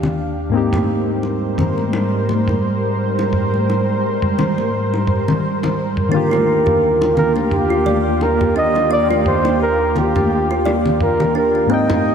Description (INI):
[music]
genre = sunset chillout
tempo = 86 BPM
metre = 4/4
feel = swing 56% on 16ths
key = Eb major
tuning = A4 = 440 Hz
[part]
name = soft electric-piano-like synth keys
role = accompaniment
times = 0.0-12.1 s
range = Ab2 to G5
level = -22 LUFS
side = left 1 dB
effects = chorus, auto-pan, diffuse ambient delay
[part]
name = lush unison pad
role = sustained chords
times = 0.0-12.1 s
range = Eb2 to F5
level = -19 LUFS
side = right 1 dB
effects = chorus, vintage 12-bit sampler grit
[part]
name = congas and bongos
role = percussion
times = 0.0-12.0 s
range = none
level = -23 LUFS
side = left 3 dB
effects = none
[part]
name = electronic toms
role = drums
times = 0.7-12.0 s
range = none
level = -24 LUFS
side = equal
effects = low-pass filter on toms
[part]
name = breathy flugelhorn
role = melody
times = 6.1-12.1 s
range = G4 to Eb5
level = -17 LUFS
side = right 1 dB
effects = diffuse ambient delay
[part]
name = kalimba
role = arpeggios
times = 6.1-12.0 s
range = C4 to D5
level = -23 LUFS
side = right 1 dB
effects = diffuse ambient delay
[sound]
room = wet lush hall reverb, RT60 2.3 s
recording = dreamy mix soaked in reverb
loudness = -14 LUFS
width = side -7 dB against mid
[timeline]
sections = 0.0-12.1 A section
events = none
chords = 0.0 Ebmaj9; 0.5 Abmaj9; 6.1 Ebmaj9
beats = | 0.54 1.24 1.93 2.63 | 3.33 4.03 4.72 5.42 | 6.12 6.82 7.51 8.21 | 8.91 9.61 10.30 11.00 | 11.70